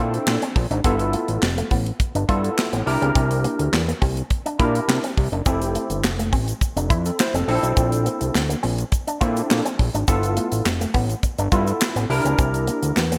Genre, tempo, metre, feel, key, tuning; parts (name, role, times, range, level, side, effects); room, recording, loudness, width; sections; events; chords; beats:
early-eighties boogie funk; 104 BPM; 4/4; straight; A4 = 441 Hz
barky tine electric piano; accompaniment; 0.0-13.0 s; B3 to C5; -27 LUFS; equal; ensemble chorus
electric guitar with an envelope filter; riff; 0.0-13.2 s; A3 to F4; -31 LUFS; equal; lush chorus
fat analog bass; bass; 0.0-13.2 s; F1 to C3; -25 LUFS; equal
tight funk drum kit; drums; 0.1-13.2 s; handclaps, hi-hat, kick drum, snare drum; -25 LUFS; equal; gated reverb
egg shaker; percussion; 5.5-13.2 s; -39 LUFS; equal
moderate lush hall reverb, RT60 1.9 s, small room ambience; bright 1980s-style digital production; -21 LUFS; mono
0.0-13.2 A section
0.0 Bbmaj9#11; 0.8 G13; 2.9 C7; 5.5 Fmaj7; 7.5 Bbmaj9#11; 10.1 G13; 12.1 C7
0.27 | 0.85 1.42 2.00 2.58 | 3.15 3.73 4.31 4.88 | 5.46 6.04 6.62 7.19 | 7.77 8.35 8.92 9.50 | 10.08 10.65 11.23 11.81 | 12.38 12.96